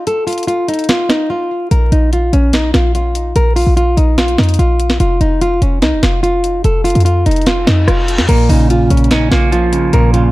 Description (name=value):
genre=hip hop, trap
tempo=146 BPM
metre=4/4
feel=half-time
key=Bb harmonic minor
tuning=A4 = 441 Hz
part: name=nylon-string guitar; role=melody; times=0.0-10.3 s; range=Db4 to Bb4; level=-15 LUFS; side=equal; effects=ping-pong delay
part: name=trap drum kit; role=drums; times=0.1-10.2 s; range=crash cymbal, hi-hat, rim click, snare drum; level=-18 LUFS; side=equal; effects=none
part: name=short 808-style bass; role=bass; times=1.7-10.3 s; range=F1 to F2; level=-13 LUFS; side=equal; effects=none
part: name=reverse cymbal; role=sound effects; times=7.6-8.3 s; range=none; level=-24 LUFS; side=left 1 dB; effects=none
part: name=clean electric guitar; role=accompaniment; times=8.3-10.3 s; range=Bb2 to Db4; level=-13 LUFS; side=right 2 dB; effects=none
room=digital ambience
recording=dark, warm production, vinyl crackle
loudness=-10 LUFS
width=side -18 dB against mid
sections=0.0-8.3 A section; 8.3-10.3 B section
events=break 0.0-1.7; reverse cymbal 7.6-8.3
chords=0.0 N.C.; 1.7 Bb5; 5.0 F5; 8.3 Bbm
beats=| 0.07 0.48 0.89 1.30 | 1.71 2.12 2.53 2.94 | 3.36 3.77 4.18 4.59 | 5.00 5.41 5.82 6.23 | 6.64 7.05 7.47 7.88 | 8.29 8.70 9.11 9.52 | 9.93